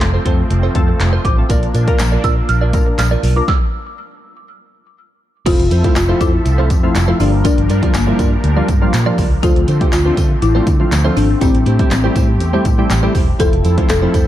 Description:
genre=dance-pop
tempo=121 BPM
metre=4/4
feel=straight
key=F major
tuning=A4 = 440 Hz
part: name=folk marimba with medium mallets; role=melody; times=0.0-14.3 s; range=Bb3 to F6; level=-20 LUFS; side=left 3 dB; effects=ping-pong delay
part: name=glassy digital keys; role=accompaniment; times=0.0-14.3 s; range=F3 to Bb4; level=-20 LUFS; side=equal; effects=chorus, sidechain pumping
part: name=filtered supersaw swell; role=sustained chords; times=0.0-14.3 s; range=D3 to E5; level=-26 LUFS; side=equal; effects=sidechain pumping
part: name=direct-recorded clean electric guitar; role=riff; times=0.0-14.3 s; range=E4 to D5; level=-24 LUFS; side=right 6 dB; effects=wide subtle chorus
part: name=vintage muted fingered electric bass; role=bass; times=0.0-14.3 s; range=E1 to D3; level=-16 LUFS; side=equal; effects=sidechain pumping
part: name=punchy analog drum machine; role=drums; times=0.0-14.3 s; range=crash cymbal, handclaps, hi-hat, kick drum, snare drum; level=-16 LUFS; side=equal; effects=none
part: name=downlifter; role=sound effects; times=0.0-1.5 s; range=none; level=barely audible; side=none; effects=none
part: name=tambourine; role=percussion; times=1.5-14.3 s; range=none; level=-34 LUFS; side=left 7 dB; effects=none
room=little or no reverb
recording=dark, warm production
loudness=-12 LUFS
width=side -12 dB against mid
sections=0.0-5.5 A section; 5.5-14.3 B section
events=stop 3.5-5.5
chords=0.0 F; 1.5 Bb; 3.5 N.C.; 5.5 Fmaj7; 7.2 Gm7; 9.4 Dm7; 11.4 Am7; 13.4 Fmaj7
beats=0.01 0.51 1.00 | 1.50 1.99 2.49 2.98 | 3.48 3.98 4.47 4.97 | 5.46 5.96 6.46 6.95 | 7.45 7.94 8.44 8.94 | 9.43 9.93 10.42 10.92 | 11.41 11.91 12.41 12.90 | 13.40 13.89

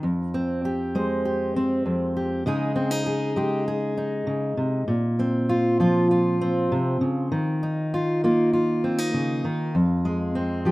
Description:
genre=folk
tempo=99 BPM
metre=4/4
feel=straight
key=F minor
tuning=A4 = 441 Hz
part: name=fingerpicked steel-string acoustic guitar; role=solo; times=0.0-10.7 s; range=F2 to C5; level=-21 LUFS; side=equal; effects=none
room=light reverb, small room reverb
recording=rough home demo mix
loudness=-21 LUFS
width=side -19 dB against mid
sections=0.0-10.7 A section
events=none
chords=0.0 Fmadd9; 2.5 Dbsus2; 4.9 Bbsus2; 7.3 Ebsus2; 9.7 Fm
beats=| 0.03 0.63 1.24 1.85 | 2.46 3.06 3.67 4.28 | 4.88 5.49 6.10 6.71 | 7.31 7.92 8.53 9.13 | 9.74 10.35

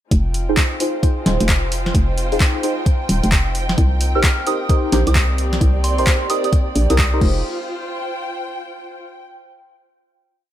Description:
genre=UK garage, two-step garage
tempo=131 BPM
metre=4/4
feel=swing 63% on 16ths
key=F minor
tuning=A4 = 439 Hz
part: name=dark studio violin section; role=sustained chords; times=0.1-7.4 s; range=Ab3 to G5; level=-32 LUFS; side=left 2 dB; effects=sidechain pumping
part: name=hollow knocking FM bass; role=bass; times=0.1-7.4 s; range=Eb1 to C2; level=-18 LUFS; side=equal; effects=none
part: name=electronic kick drum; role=drums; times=0.1-7.3 s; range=none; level=-17 LUFS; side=equal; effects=overdrive
part: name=punchy analog drum machine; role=drums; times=0.1-7.3 s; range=crash cymbal, handclaps, hi-hat, snare drum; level=-22 LUFS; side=equal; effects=overdrive
part: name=dark studio string section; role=texture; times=0.1-9.2 s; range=C4 to G5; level=-28 LUFS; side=right 2 dB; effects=sidechain pumping
part: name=deep mellow chord stab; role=stabs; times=0.5-7.4 s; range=Eb4 to C5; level=-22 LUFS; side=equal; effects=chorus, phaser, ping-pong delay
part: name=soft synth bell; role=melody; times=4.2-7.1 s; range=C6 to F6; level=-26 LUFS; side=right 5 dB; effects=chorus, phaser, ping-pong delay
room=little or no reverb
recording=none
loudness=-15 LUFS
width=side -12 dB against mid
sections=0.1-7.4 groove; 7.4-9.3 final note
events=none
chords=0.1 Fm7; 3.8 Cm7; 7.2 Fm7; 7.4 F5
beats=| 0.12 0.57 1.03 1.49 | 1.95 2.40 2.86 3.32 | 3.78 4.24 4.70 5.15 | 5.61 6.07 6.53 6.99 | 7.44 7.90 8.36 8.82

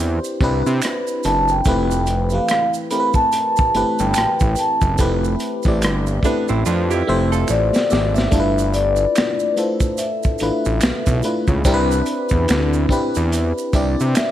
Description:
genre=R&B, neo-soul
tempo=72 BPM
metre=4/4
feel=swing 60% on 16ths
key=C major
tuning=A4 = 440 Hz
part: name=FM electric piano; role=accompaniment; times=0.0-14.3 s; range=E3 to E5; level=-21 LUFS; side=left 1 dB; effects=chorus
part: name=fat analog bass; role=bass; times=0.0-14.1 s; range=F1 to C3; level=-20 LUFS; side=equal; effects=none
part: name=crunchy breakbeat drum kit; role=drums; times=0.0-14.3 s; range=finger snaps, hi-hat, kick drum, rim click, snare drum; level=-20 LUFS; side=equal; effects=none
part: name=maracas and finger snaps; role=percussion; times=0.2-14.3 s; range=none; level=-31 LUFS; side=right 7 dB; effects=none
part: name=vibraphone with soft mallets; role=melody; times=1.2-14.3 s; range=B4 to B5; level=-20 LUFS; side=left 1 dB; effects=none
part: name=hollow-body jazz guitar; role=second line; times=6.3-8.3 s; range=B3 to A4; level=-25 LUFS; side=right 8 dB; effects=none
room=light reverb, small room ambience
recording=none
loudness=-16 LUFS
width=side -12 dB against mid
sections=0.0-8.3 A section; 8.3-14.3 B section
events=drum fill 6.7-8.3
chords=0.0 Cmaj9; 1.7 Fmaj9#11; 8.3 G13; 11.7 Cmaj9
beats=0.82 | 1.65 2.49 3.32 4.15 | 4.99 5.82 6.65 7.49 | 8.32 9.15 9.99 10.82 | 11.65 12.49 13.32 14.15

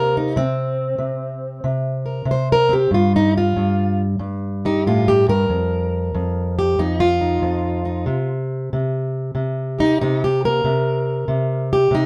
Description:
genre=acoustic country blues, solo or duo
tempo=93 BPM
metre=4/4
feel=swing 66% on 8ths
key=unclear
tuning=A4 = 441 Hz
part: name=fingerpicked plugged-in steel-string acoustic guitar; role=solo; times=0.0-12.1 s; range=F2 to C5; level=-20 LUFS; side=equal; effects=none
room=moderate studio ambience, RT60 0.5 s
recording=band playing live in one room, faint mains hum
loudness=-20 LUFS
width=mono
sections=0.0-12.1 A section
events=steel-string acoustic guitar solo 0.0-12.1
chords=0.0 C7(no3); 2.9 G7sus2; 5.5 F7sus4; 8.1 C7(no3)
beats=| 0.36 1.00 1.65 2.29 | 2.93 3.58 4.22 4.86 | 5.50 6.15 6.79 7.43 | 8.07 8.72 9.36 10.00 | 10.65 11.29 11.94

